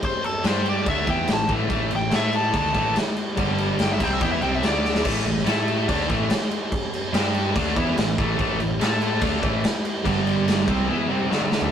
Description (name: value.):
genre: hard rock.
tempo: 144 BPM.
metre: 4/4.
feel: straight.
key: A minor.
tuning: A4 = 440 Hz.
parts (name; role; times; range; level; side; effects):
nasal lead guitar with a parked wah; melody; 0.0-5.0 s; A4 to A5; -25 LUFS; left 1 dB; overdrive.
raw garage drum kit; drums; 0.0-11.7 s; crash cymbal, kick drum, snare drum, toms; -24 LUFS; equal; none.
distorted electric guitar; riff; 0.4-11.7 s; G2 to A4; -28 LUFS; left 4 dB; overdrive.
sludgy distorted guitar; riff; 0.4-11.7 s; G2 to A4; -27 LUFS; right 3 dB; overdrive.
tight distorted guitar; riff; 0.4-11.7 s; G2 to A4; -28 LUFS; equal; distortion.
overdriven picked electric bass; bass; 0.4-10.9 s; G1 to A2; -29 LUFS; equal; none.
room: moderate small room reverb, RT60 0.5 s.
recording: rough rehearsal-room recording, tube saturation.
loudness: -20 LUFS.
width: side -8 dB against mid.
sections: 0.0-5.0 A section; 5.0-11.7 B section.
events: lead electric guitar solo 0.0-5.0; drum fill 4.8, 11.3-11.7.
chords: 0.4 G5; 0.9 A5; 3.4 G5; 4.0 Cmaj7; 4.6 D5; 5.0 A5; 7.1 G5; 7.5 A5; 10.0 G5; 10.7 Cmaj7; 11.3 D5.